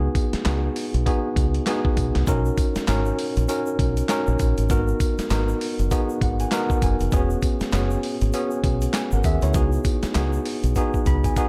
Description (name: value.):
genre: R&B, new jack swing.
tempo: 99 BPM.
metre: 4/4.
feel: swing 60% on 16ths.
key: unclear.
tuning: A4 = 436 Hz.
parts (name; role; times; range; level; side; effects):
tine electric piano; accompaniment; 0.0-11.5 s; B3 to B5; -27 LUFS; equal; overdrive.
deep dub fingered electric bass; bass; 0.0-11.3 s; E1 to D#2; -25 LUFS; equal; none.
dusty soul sampler-style drum kit; drums; 0.1-11.5 s; handclaps, hi-hat, kick drum, snare drum, tambourine; -27 LUFS; equal; none.
tube shaker; percussion; 2.3-11.5 s; none; -46 LUFS; equal; none.
room: little or no reverb.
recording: none.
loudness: -22 LUFS.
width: mono.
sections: 0.0-11.5 A section.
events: tine electric piano fill 5.9-7.1, 10.8-11.5; drum fill 10.8-11.5.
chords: 0.0 C#9sus4; 2.3 Bmaj7; 4.7 G#m7; 7.1 E69; 9.5 C#9sus4.